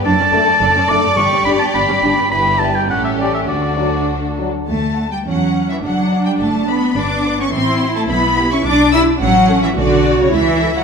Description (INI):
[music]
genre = quick classical-period movement for symphony orchestra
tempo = 106 BPM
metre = 2/4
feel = rubato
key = D major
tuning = A4 = 440 Hz
[part]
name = warm studio violin section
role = melody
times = 0.0-10.8 s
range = F#4 to F#5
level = -26 LUFS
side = left 4 dB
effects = none
[part]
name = warm studio violin section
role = second line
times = 0.0-10.8 s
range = F#4 to E6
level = -20 LUFS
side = left 3 dB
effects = none
[part]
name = warm studio viola section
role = accompaniment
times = 0.0-10.8 s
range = A3 to F#4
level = -20 LUFS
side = right 2 dB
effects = none
[part]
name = warm studio cello section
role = bass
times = 0.0-10.8 s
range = F#2 to E4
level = -18 LUFS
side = equal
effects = none
[part]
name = warm studio double bass section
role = bass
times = 0.0-10.8 s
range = F#1 to E2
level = -22 LUFS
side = right 2 dB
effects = none
[part]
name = clear oboe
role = second line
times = 0.1-4.1 s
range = D5 to D6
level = -16 LUFS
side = right 1 dB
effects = none
[part]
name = mellow French horn section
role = sustained chords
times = 0.3-4.5 s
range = F#3 to E4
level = -22 LUFS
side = left 4 dB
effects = none
[sound]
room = wet scoring stage reverb, RT60 1.6 s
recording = minimal, uncompressed stereo recording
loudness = -13 LUFS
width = side -6 dB against mid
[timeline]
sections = 0.0-4.7 A section; 4.7-10.8 B section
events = none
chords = 0.0 D/F#; 1.2 G; 2.3 Em/G; 2.9 A7; 3.5 D; 5.3 C#madd11/E; 5.8 D/F#; 7.0 G; 7.5 F#dim/A; 8.1 G/B; 9.2 A; 9.8 G#dim/B; 10.3 A/C#